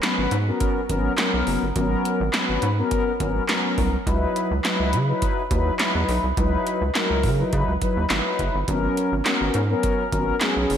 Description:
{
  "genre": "early-eighties boogie funk",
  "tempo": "104 BPM",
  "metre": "4/4",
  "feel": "straight",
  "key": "G# minor",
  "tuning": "A4 = 440 Hz",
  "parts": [
    { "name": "mellow synth brass", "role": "accompaniment", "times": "0.0-10.8 s", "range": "F#3 to B4", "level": "-23 LUFS", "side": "left 2 dB", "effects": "chorus" },
    { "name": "electro analog drum machine", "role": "drums", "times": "0.0-10.8 s", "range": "handclaps, hi-hat, kick drum, snare drum", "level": "-25 LUFS", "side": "right 1 dB", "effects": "overdrive" },
    { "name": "rubbery square bass", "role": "bass", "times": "0.2-10.8 s", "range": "F#1 to C#3", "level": "-24 LUFS", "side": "right 1 dB", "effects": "none" }
  ],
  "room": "moderate lush hall reverb, RT60 1.6 s",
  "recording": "dreamy mix soaked in reverb",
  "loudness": "-20 LUFS",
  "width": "side -9 dB against mid",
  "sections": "0.0-10.8 A section",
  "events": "none",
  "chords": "0.0 G#m11; 4.1 C#m11; 8.7 G#m11"
}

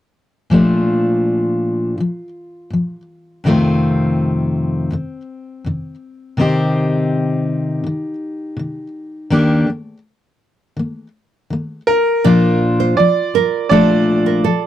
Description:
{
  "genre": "pop",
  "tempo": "82 BPM",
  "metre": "4/4",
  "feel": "straight",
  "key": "Bb major",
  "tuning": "A4 = 440 Hz",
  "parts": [
    { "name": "fingerpicked steel-string acoustic guitar", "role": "accompaniment", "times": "0.5-14.7 s", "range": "F2 to G4", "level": "-15 LUFS", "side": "left 1 dB", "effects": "none" },
    { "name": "clear upright piano", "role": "melody", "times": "11.9-14.7 s", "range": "Bb4 to D5", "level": "-16 LUFS", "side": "right 3 dB", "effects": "none" },
    { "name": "nylon-string guitar", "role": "arpeggios", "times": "12.2-14.6 s", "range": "A4 to D5", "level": "-19 LUFS", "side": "right 11 dB", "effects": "none" }
  ],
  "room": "moderate booth ambience, RT60 0.2 s",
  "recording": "dry, close 1970s-style studio recording",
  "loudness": "-14 LUFS",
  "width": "side -12 dB against mid",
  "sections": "0.5-12.2 A section; 12.2-14.7 B section",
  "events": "none",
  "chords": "0.5 Bbmaj7; 3.4 F7; 6.4 Cm; 9.3 Ebmaj7; 12.2 Bbmaj7"
}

